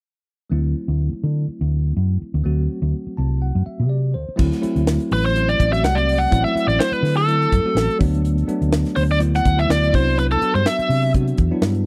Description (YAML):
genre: electric jazz fusion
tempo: 124 BPM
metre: 4/4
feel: swing 54% on 16ths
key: D mixolydian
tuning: A4 = 444 Hz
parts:
  - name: bell-like tine electric piano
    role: accompaniment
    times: 0.5-11.9 s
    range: F#3 to A5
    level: -27 LUFS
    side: equal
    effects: none
  - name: hollow-body short-scale fingered electric bass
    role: bass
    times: 0.5-11.8 s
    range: A1 to D3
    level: -22 LUFS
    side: equal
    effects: none
  - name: crisp fusion drum kit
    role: drums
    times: 4.4-11.9 s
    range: crash cymbal, hi-hat, kick drum, snare drum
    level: -24 LUFS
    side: equal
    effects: none
  - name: biting lead guitar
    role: melody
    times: 5.1-11.1 s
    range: A4 to F#5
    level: -22 LUFS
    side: equal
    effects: overdrive
room: small room ambience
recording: dry, close 1970s-style studio recording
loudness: -19 LUFS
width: mono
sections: 0.5-4.4 A section; 4.4-11.9 B section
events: tine electric piano fill 2.9-4.4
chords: 0.5 D7; 4.1 Csus2/D; 4.4 D7; 8.0 D69; 9.9 Cmaj9#11